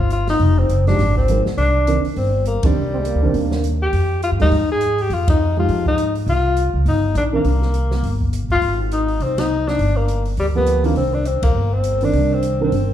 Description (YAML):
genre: jazz, small-group swing and bop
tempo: 204 BPM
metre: 4/4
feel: swing 59% on 8ths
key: C minor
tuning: A4 = 440 Hz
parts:
  - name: breathy tenor saxophone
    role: melody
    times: 0.0-12.9 s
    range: G3 to Ab4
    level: -20 LUFS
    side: left 2 dB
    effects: none
  - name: upright bass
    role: bass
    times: 0.0-12.9 s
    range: F1 to Ab2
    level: -19 LUFS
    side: equal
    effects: none
  - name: open jazz drum kit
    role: drums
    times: 0.1-12.8 s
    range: hi-hat, kick drum, ride cymbal, snare drum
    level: -23 LUFS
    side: equal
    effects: none
  - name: dark concert grand piano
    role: accompaniment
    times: 0.9-7.4, 10.5-12.7 s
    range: Eb3 to C5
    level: -23 LUFS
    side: right 3 dB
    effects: none
  - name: growling trombone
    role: second line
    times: 2.9-3.7 s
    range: Ab3 to C4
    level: -27 LUFS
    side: right 4 dB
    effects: none
room: wet large studio reverb, RT60 1.4 s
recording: heard from further back in the room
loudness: -16 LUFS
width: side -11 dB against mid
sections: 0.0-12.9 A section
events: band accent 2.6, 5.2, 9.3, 11.4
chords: 0.4 Fm7; 1.6 Cm9; 3.9 Fm9; 6.3 C7(no3); 8.6 Ab; 9.8 G7#9; 11.0 Cm9